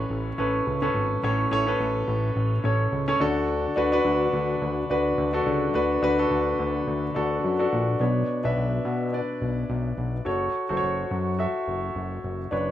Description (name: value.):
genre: piano-driven pop.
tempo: 106 BPM.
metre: 4/4.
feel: swing 56% on 16ths.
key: B minor.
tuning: A4 = 440 Hz.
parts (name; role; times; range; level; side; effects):
warm concert grand piano; accompaniment; 0.0-12.7 s; A2 to E5; -24 LUFS; equal; none.
fat analog bass; bass; 0.0-12.7 s; F#1 to B2; -27 LUFS; left 1 dB; none.
room: light reverb.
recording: none.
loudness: -23 LUFS.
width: side -12 dB against mid.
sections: 0.0-8.0 A section; 8.0-12.7 B section.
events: none.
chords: 0.0 Aadd9; 3.2 D; 8.0 Bmadd9; 10.3 F#m.